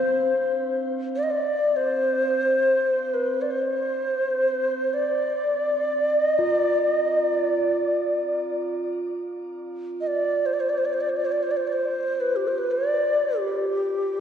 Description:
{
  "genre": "world meditative, free-time meditation music",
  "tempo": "free time",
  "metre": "none",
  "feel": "none",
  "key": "unclear",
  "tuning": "A4 = 440 Hz",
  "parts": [
    { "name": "mellow hollow Native American-style cedar flute", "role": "melody", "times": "0.0-14.2 s", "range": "G4 to Eb5", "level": "-22 LUFS", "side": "equal", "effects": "shimmer reverb, ping-pong delay" },
    { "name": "bronze singing bowl", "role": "texture", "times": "0.0-14.2 s", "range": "C4 to F4", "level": "-32 LUFS", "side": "right 3 dB", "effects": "shimmer reverb" }
  ],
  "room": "wet concert hall reverb, RT60 2.0 s",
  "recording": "worn, warbling old tape, cassette tape, warbly pitch drift",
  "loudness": "-21 LUFS",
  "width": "side -8 dB against mid",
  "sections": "0.0-14.2 A section",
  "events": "none",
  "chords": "none"
}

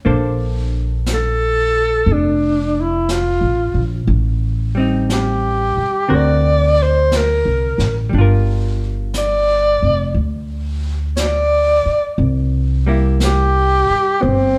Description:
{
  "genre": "jazz ballad",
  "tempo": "59 BPM",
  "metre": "4/4",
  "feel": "swing 68% on 8ths",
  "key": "unclear",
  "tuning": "A4 = 441 Hz",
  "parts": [
    { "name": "hollow-body jazz guitar", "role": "accompaniment", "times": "0.0-14.6 s", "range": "D3 to C5", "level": "-24 LUFS", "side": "equal", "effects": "none" },
    { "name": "upright bass", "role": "bass", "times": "0.1-14.6 s", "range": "F1 to D2", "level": "-20 LUFS", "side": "equal", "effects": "none" },
    { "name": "jazz brush drum kit", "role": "drums", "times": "0.1-14.6 s", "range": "brushed snare drum, hi-hat, snare drum", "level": "-30 LUFS", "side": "equal", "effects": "none" },
    { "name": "breathy alto saxophone", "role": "melody", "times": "1.1-14.6 s", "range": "B3 to D5", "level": "-18 LUFS", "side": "equal", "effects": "none" }
  ],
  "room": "moderate large studio reverb, RT60 0.9 s",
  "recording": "heard from further back in the room",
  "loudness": "-17 LUFS",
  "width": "mono",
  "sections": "0.0-14.6 A section",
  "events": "none",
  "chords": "0.0 Bbmaj9; 4.1 Am7b5; 6.1 D7b13; 8.1 Gm7; 12.2 C7"
}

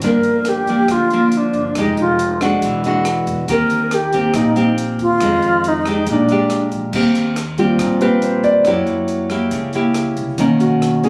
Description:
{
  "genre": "bossa nova",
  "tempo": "139 BPM",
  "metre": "4/4",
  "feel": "straight",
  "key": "Eb major",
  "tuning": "A4 = 440 Hz",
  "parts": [
    { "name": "nylon-string guitar", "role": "accompaniment", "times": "0.0-11.1 s", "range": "F2 to G4", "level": "-20 LUFS", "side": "equal", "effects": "none" },
    { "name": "upright bass", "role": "bass", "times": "0.0-11.1 s", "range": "E1 to Gb2", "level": "-30 LUFS", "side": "equal", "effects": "none" },
    { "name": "compact cocktail drum kit", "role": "drums", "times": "0.0-11.1 s", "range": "crash cymbal, hi-hat, kick drum, rim click", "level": "-32 LUFS", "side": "equal", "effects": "none" },
    { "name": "bright reedy alto flute", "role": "melody", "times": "0.1-6.7 s", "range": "D4 to Bb4", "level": "-19 LUFS", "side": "equal", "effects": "none" },
    { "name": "warm concert grand piano", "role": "accompaniment", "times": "7.6-11.1 s", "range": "D#3 to D5", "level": "-18 LUFS", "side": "equal", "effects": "none" }
  ],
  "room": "light reverb",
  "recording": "recorded on a phone in the room, club reverb, compression",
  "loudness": "-16 LUFS",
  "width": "mono",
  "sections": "0.0-6.9 A section; 6.9-11.1 B section",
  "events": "grand piano solo 6.9-11.1",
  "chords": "0.0 Gm7; 1.8 Fm9; 2.6 E9; 3.5 Eb6; 5.2 Fm7; 6.1 Bb6; 6.9 Eb6; 8.7 Gb7b9; 10.4 Bmaj9"
}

